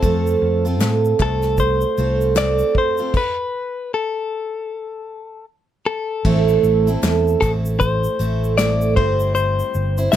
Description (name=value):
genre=acoustic pop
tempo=77 BPM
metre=4/4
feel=swing 60% on 16ths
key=A minor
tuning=A4 = 440 Hz
part: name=direct-recorded clean electric guitar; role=melody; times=0.0-10.2 s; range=A4 to E5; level=-22 LUFS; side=left 5 dB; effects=none
part: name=picked steel-string acoustic guitar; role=accompaniment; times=0.0-10.2 s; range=A2 to C5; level=-20 LUFS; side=right 6 dB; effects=none
part: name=fingered electric bass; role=bass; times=0.0-10.2 s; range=G1 to A2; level=-20 LUFS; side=equal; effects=none
part: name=unplugged drum kit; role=drums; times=0.0-10.2 s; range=crash cymbal, kick drum, shaker, snare drum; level=-22 LUFS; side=left 1 dB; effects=none
part: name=group handclap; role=percussion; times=0.8-10.2 s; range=none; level=-31 LUFS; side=left 6 dB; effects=none
room=little or no reverb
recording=close, detailed microphones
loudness=-16 LUFS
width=side -11 dB against mid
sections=0.0-6.3 A section; 6.3-10.2 A section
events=stop 3.1-6.3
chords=0.0 F; 3.1 N.C.; 6.3 Am; 9.0 C/G